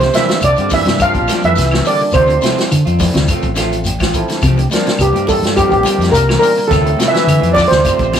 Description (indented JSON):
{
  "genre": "afrobeat",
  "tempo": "105 BPM",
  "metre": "4/4",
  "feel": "straight",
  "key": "C mixolydian",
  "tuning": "A4 = 440 Hz",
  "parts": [
    { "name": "steel pan", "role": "melody", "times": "0.0-8.2 s", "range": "G4 to F5", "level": "-14 LUFS", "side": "right 1 dB", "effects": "none" },
    { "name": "bright trombone section", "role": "second line", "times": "0.0-8.2 s", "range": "G2 to F3", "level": "-22 LUFS", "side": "left 2 dB", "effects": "none" },
    { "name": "clear trumpet", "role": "second line", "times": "0.0-8.2 s", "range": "G4 to F5", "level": "-24 LUFS", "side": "right 4 dB", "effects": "none" },
    { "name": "semi-hollow electric guitar", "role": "arpeggios", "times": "0.0-8.2 s", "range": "C3 to E3", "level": "-24 LUFS", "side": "left 6 dB", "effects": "none" },
    { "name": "electric guitar at the edge of break-up", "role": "stabs", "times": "0.0-8.2 s", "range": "F3 to G4", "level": "-24 LUFS", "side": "right 2 dB", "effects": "spring reverb" },
    { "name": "fingered electric bass", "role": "bass", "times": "0.0-8.2 s", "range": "A1 to D3", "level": "-16 LUFS", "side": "equal", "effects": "none" },
    { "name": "vintage drum kit", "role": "drums", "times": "0.0-8.2 s", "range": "hi-hat, kick drum, snare drum", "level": "-19 LUFS", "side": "left 1 dB", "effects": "none" },
    { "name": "congas", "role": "percussion", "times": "0.0-8.2 s", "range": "none", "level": "-27 LUFS", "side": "right 2 dB", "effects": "none" },
    { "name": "shekere", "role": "percussion", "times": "0.0-8.2 s", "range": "none", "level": "-25 LUFS", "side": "left 3 dB", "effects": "none" },
    { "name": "barky tine electric piano", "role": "accompaniment", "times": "0.1-8.2 s", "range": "F3 to A5", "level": "-24 LUFS", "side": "right 1 dB", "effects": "overdrive" },
    { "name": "claves", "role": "percussion", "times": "0.4-8.2 s", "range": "none", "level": "-27 LUFS", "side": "left 2 dB", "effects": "none" }
  ],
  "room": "moderate studio reverb, RT60 0.5 s",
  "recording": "rough rehearsal-room recording",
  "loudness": "-11 LUFS",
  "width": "side -8 dB against mid",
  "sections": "0.0-8.2 A section",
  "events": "tine electric piano fill 2.7-4.4",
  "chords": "0.0 C7sus4; 2.1 Dm7; 4.4 C7sus4; 6.7 Dm7"
}